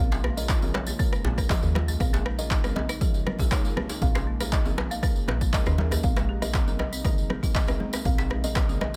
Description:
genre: afro house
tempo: 119 BPM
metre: 4/4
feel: straight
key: Bb minor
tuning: A4 = 440 Hz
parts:
  - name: kalimba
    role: melody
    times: 0.0-9.0 s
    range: Db5 to F5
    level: -40 LUFS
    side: equal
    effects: delay
  - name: warm analog pad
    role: sustained chords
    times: 0.0-9.0 s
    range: C3 to F4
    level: -42 LUFS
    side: equal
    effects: none
  - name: felt-muted upright piano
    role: stabs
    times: 0.0-8.8 s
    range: Ab3 to Bb4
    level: -41 LUFS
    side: equal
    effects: sidechain pumping, delay
  - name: woody FM bass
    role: bass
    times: 0.0-9.0 s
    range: Bb1 to Eb2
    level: -32 LUFS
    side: equal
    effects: sidechain pumping
  - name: folk marimba with hard mallets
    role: arpeggios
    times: 0.1-8.8 s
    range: Eb3 to Bb4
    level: -39 LUFS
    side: equal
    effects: sidechain pumping, delay
  - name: djembe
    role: percussion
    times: 0.1-8.9 s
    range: none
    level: -38 LUFS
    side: equal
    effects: none
  - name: tambourine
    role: percussion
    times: 0.1-9.0 s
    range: none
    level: -41 LUFS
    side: equal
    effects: none
  - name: electronic rim click and handclaps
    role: drums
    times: 0.2-8.9 s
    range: none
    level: -35 LUFS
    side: equal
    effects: overdrive, studio reverb
  - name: electronic kick drum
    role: drums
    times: 0.5-8.7 s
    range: none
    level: -28 LUFS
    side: equal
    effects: overdrive, studio reverb
  - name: congas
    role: percussion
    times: 0.6-8.9 s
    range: none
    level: -37 LUFS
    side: equal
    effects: none
room: studio ambience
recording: none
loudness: -25 LUFS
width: mono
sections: 0.0-9.0 A section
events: none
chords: 0.0 Bbm7; 6.0 Abadd9/Bb

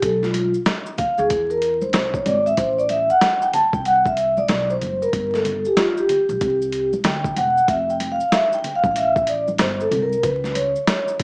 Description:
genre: hip hop, jazz-hop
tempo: 94 BPM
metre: 4/4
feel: swing 63% on 16ths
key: unclear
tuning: A4 = 442 Hz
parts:
  - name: vibraphone with soft mallets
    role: accompaniment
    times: 0.0-11.2 s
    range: F4 to A5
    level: -18 LUFS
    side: equal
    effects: none
  - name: upright bass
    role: bass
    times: 0.0-10.7 s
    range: E1 to E2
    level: -27 LUFS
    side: equal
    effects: none
  - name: boom bap sampler-style drum kit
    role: drums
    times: 0.0-11.2 s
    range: hi-hat, kick drum, snare drum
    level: -23 LUFS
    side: equal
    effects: none
  - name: maracas and congas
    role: percussion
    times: 0.0-11.2 s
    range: none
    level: -34 LUFS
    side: equal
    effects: none
room: light reverb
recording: vinyl crackle, small speaker sound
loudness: -17 LUFS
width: side -32 dB against mid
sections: 0.0-11.2 A section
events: vibraphone solo 0.0-11.2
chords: 0.0 B7(b5, no3); 1.3 Eaug; 2.6 Am; 5.1 Gm; 6.4 Cadd9; 7.7 Fadd9; 10.2 C#7(no3)

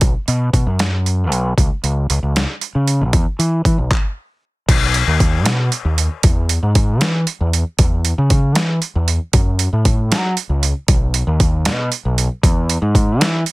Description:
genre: math rock and midwest emo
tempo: 77 BPM (dotted quarters)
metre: 6/8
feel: straight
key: E major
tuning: A4 = 440 Hz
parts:
  - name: growling fingered electric bass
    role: bass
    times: 0.0-13.4 s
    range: B1 to F#3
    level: -16 LUFS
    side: equal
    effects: overdrive
  - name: boom bap sampler-style drum kit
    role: drums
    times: 0.0-13.5 s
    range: crash cymbal, handclaps, hi-hat, kick drum, snare drum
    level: -16 LUFS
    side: equal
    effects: overdrive
room: little or no reverb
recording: dense, heavily limited modern master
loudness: -14 LUFS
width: side -21 dB against mid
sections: 0.0-4.7 A section; 4.7-13.5 B section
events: stop 3.9-4.7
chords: none

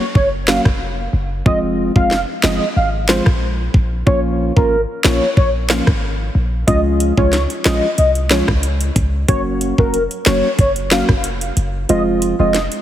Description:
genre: dancehall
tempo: 92 BPM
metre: 4/4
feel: straight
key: Bb minor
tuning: A4 = 440 Hz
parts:
  - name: warm velvety synth lead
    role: melody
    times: 0.0-12.6 s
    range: Bb4 to F5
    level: -20 LUFS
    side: equal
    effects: chorus, ping-pong delay
  - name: percussive organ stab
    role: accompaniment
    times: 0.0-12.6 s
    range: F3 to Gb4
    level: -20 LUFS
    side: equal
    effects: chorus
  - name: clean 808-style bass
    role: bass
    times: 0.2-12.7 s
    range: F1 to Db2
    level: -19 LUFS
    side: equal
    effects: none
  - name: island pop drum kit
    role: drums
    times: 0.2-12.8 s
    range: finger snaps, hi-hat, kick drum, rim click, snare drum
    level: -17 LUFS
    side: equal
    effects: none
room: light reverb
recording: heavily compressed radio sound, multiband compression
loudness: -14 LUFS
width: side -12 dB against mid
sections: 0.0-12.8 A section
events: kick muted 11.9-12.8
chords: 0.0 Gb; 1.5 Fm; 4.1 Bbm; 6.7 Db; 9.3 Gb; 11.9 Fm

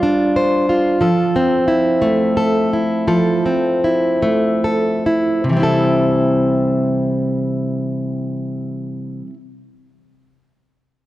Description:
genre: pop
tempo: 44-61 BPM (dotted quarters)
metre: 6/8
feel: straight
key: C major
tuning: A4 = 440 Hz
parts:
  - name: fingerpicked plugged-in steel-string acoustic guitar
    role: solo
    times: 0.0-9.4 s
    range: C3 to C5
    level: -15 LUFS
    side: equal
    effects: none
room: moderate concert hall reverb, RT60 1.9 s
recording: dark, warm production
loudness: -14 LUFS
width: side -15 dB against mid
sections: 0.0-5.5 A section; 5.5-11.0 B section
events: slowing down 1.0-5.5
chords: 0.0 G7sus4; 1.0 Fmaj7; 5.5 C6

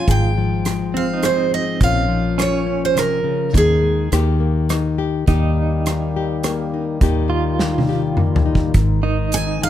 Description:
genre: acoustic folk-pop ballad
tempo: 104 BPM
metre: 3/4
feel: straight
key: unclear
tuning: A4 = 440 Hz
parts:
  - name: picked steel-string acoustic guitar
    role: melody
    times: 0.0-4.1, 9.3-9.7 s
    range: Ab4 to Ab5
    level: -20 LUFS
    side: right 4 dB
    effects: none
  - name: nylon-string guitar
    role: accompaniment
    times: 0.0-9.7 s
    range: Ab2 to Ab4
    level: -21 LUFS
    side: left 7 dB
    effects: none
  - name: direct-recorded clean electric guitar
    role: arpeggios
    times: 0.0-9.7 s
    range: C4 to F4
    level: -26 LUFS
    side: right 6 dB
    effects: tremolo
  - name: fingered electric bass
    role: bass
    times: 0.0-9.7 s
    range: Ab1 to Eb2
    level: -20 LUFS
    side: right 1 dB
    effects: none
  - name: loose indie drum kit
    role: drums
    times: 0.1-9.5 s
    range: hi-hat, kick drum, rim click, snare drum, toms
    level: -20 LUFS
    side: equal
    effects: none
  - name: hand-pumped harmonium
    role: sustained chords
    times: 5.3-8.7 s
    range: Eb3 to G4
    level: -29 LUFS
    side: right 2 dB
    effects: none
room: little or no reverb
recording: none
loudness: -16 LUFS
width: side -11 dB against mid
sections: 0.0-5.3 A section; 5.3-8.8 B section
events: drum fill 7.6-8.8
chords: 0.1 Fm/Ab; 1.8 Bbm; 3.5 Ebsus4; 4.1 Eb; 8.8 Ab

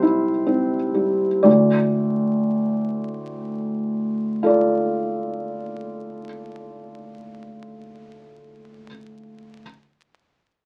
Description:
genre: neoclassical minimalist piano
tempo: 40 BPM (dotted quarters)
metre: 6/8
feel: rubato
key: D minor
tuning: A4 = 437 Hz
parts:
  - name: felt-muted upright piano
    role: solo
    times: 0.0-9.6 s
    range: D2 to D5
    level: -22 LUFS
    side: equal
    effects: none
room: moderate studio reverb, RT60 0.6 s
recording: very old 78 rpm record, vinyl crackle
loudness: -21 LUFS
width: mono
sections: 0.0-1.4 A section; 1.4-7.4 B section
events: slowing down 0.0-1.4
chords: 0.0 C; 1.4 Dm

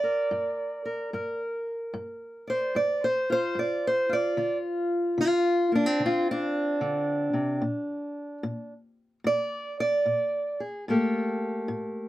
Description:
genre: acoustic country blues, solo or duo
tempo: 74 BPM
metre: 4/4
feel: swing 66% on 8ths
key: D minor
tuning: A4 = 436 Hz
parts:
  - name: fingerpicked steel-string acoustic guitar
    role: solo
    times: 0.0-12.1 s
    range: G2 to D5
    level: -25 LUFS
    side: equal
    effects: none
room: light reverb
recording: none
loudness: -25 LUFS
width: side -15 dB against mid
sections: 0.0-12.1 A section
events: steel-string acoustic guitar solo 0.0-12.1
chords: 0.0 Gm7; 4.4 Dm7; 7.6 Bb; 10.9 A7(no3)

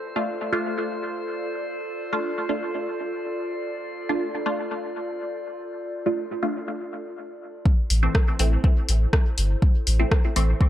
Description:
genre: dub techno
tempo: 122 BPM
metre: 4/4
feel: straight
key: unclear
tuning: A4 = 440 Hz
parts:
  - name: warbly tape-like pad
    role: sustained chords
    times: 0.0-10.7 s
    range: E4 to D5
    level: -32 LUFS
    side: equal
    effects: chorus, built-in reverb, sidechain pumping
  - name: drifting glass-harmonics texture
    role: texture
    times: 0.0-6.7 s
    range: C5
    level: -39 LUFS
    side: left 1 dB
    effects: chorus, built-in reverb, sidechain pumping
  - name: filtered dub chord stab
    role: stabs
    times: 0.2-10.7 s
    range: E3 to F4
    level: -27 LUFS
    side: equal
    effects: phaser, sidechain pumping, dub echo
  - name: electronic kick drum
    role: drums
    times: 7.7-10.7 s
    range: none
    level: -19 LUFS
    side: equal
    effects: overdrive
  - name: soft dub sub bass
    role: bass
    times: 7.9-10.5 s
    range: G1 to A1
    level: -20 LUFS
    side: equal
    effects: sidechain pumping
  - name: deep house drum kit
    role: drums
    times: 7.9-10.5 s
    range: hi-hat, rim click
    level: -27 LUFS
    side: equal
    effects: overdrive
room: light reverb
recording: echo-heavy mix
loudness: -22 LUFS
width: side -12 dB against mid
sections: 0.0-7.7 A section; 7.7-10.7 B section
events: break 6.7-7.7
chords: 0.0 Dm; 7.7 Am

